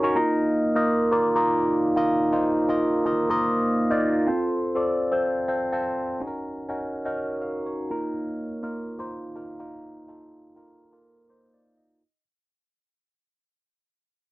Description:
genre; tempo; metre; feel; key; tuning
pop; 124 BPM; 4/4; straight; unclear; A4 = 440 Hz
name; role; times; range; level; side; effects
tine electric piano; solo; 0.0-12.2 s; Bb3 to F5; -22 LUFS; equal; phaser
room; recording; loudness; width
little or no reverb; dry, close 1970s-style studio recording; -22 LUFS; side -19 dB against mid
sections
0.0-4.3 A section; 4.3-12.0 B section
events
fade-out 4.3-12.0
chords
0.2 Ebsus2; 4.3 F; 6.2 Gb6; 7.9 Ebsus2

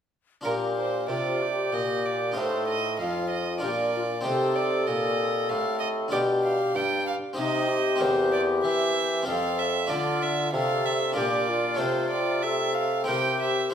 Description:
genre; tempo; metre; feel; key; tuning
classical, baroque-style sonata movement with continuo; 95 BPM; 3/4; straight; Bb major, F major from 8.0 s; A4 = 440 Hz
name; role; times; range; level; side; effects
rich violin; second line; 0.4-13.7 s; Bb4 to G5; -29 LUFS; right 6 dB; none
harpsichord; accompaniment; 0.4-13.7 s; E2 to C5; -30 LUFS; left 1 dB; none
bright baroque flute; melody; 0.5-13.7 s; D4 to A4; -28 LUFS; left 5 dB; none
clear bassoon; bass; 0.5-13.6 s; E2 to E3; -30 LUFS; right 2 dB; none
room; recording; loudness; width
wet recital hall reverb, RT60 1.3 s; none; -23 LUFS; side -8 dB against mid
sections
0.5-13.7 A section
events
none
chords
0.5 Bb; 2.4 F7/A; 3.6 Bb; 4.2 Cm; 6.1 G7/B; 7.4 Cm; 8.0 C7/E; 9.3 F; 9.9 Dm; 11.2 Bb; 11.8 F/C; 13.1 C7

